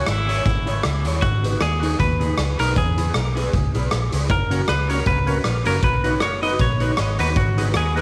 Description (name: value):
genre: ska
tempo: 156 BPM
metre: 4/4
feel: swing 56% on 8ths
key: F# mixolydian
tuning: A4 = 442 Hz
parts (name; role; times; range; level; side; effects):
- semi-hollow electric guitar; melody; 0.0-8.0 s; E4 to D#5; -27 LUFS; equal; tape echo
- electric guitar at the edge of break-up; accompaniment; 0.0-8.0 s; C#4 to C#5; -30 LUFS; equal; ensemble chorus
- vintage muted fingered electric bass; bass; 0.1-8.0 s; F#1 to E2; -25 LUFS; equal; none
- raw garage drum kit; drums; 0.1-8.0 s; hi-hat, kick drum, rim click; -26 LUFS; equal; none
- percussive tonewheel organ; stabs; 4.5-8.0 s; A#3 to B4; -31 LUFS; equal; overdrive, slow rotary speaker, tape echo
room: light reverb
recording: vinyl crackle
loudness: -20 LUFS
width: mono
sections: 0.0-8.0 A section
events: none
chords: 0.0 C#m; 1.2 G#m; 2.8 E; 4.3 F#; 5.8 B; 7.4 G#m